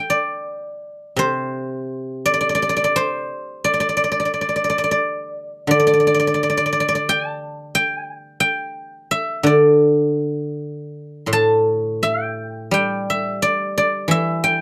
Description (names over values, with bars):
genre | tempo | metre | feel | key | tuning
chinese traditional | 80-91 BPM | 4/4 | rubato | unclear | A4 = 442 Hz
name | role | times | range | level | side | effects
guzheng | solo | 0.0-14.6 s | A2 to C6 | -20 LUFS | equal | none
room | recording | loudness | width
light reverb | close, detailed microphones | -19 LUFS | mono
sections
0.1-14.6 A section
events
none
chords
none